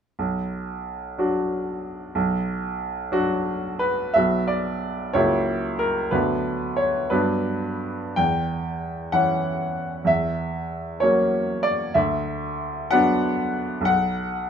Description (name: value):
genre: classical, romantic character piece for solo piano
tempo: 55-65 BPM (dotted quarters)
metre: 6/8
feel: rubato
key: B minor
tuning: A4 = 440 Hz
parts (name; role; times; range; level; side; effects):
- bright baby grand piano; solo; 0.2-14.5 s; B1 to G5; -21 LUFS; equal; none
room: light reverb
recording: minimal, uncompressed stereo recording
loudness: -21 LUFS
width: side -7 dB against mid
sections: 0.2-4.2 A section; 4.2-14.5 B section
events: none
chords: 0.2 Bm; 5.2 F#7/C#; 6.1 Bm/D; 7.1 Gmaj7; 8.2 C#dim/E; 10.1 F#7/E; 12.0 Bm/D; 13.9 B5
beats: | 0.20 1.19 | 2.15 3.12 | 4.16 5.16 | 6.13 7.11 | 8.18 9.14 | 10.09 11.02 | 11.96 12.92 | 13.87